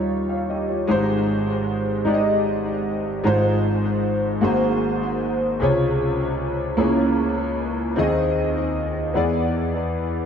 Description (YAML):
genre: gospel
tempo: 51 BPM (dotted quarters)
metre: 6/8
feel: straight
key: Ab major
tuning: A4 = 440 Hz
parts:
  - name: warm concert grand piano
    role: solo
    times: 0.0-10.3 s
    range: Ab1 to F5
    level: -19 LUFS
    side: equal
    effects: analog chorus, diffuse ambient delay
room: wet lush hall reverb, RT60 2.2 s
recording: dreamy mix soaked in reverb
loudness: -19 LUFS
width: side -7 dB against mid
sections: 0.9-10.3 A section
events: none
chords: 0.0 Eb9; 0.9 Abmaj7; 3.2 Fm7/Ab; 4.4 Ab9; 5.6 Dbmaj7; 6.8 Dbm6; 8.0 Ab/Eb; 9.1 E7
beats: | 0.88 2.06 | 3.25 4.42 | 5.61 6.79 | 7.97 9.15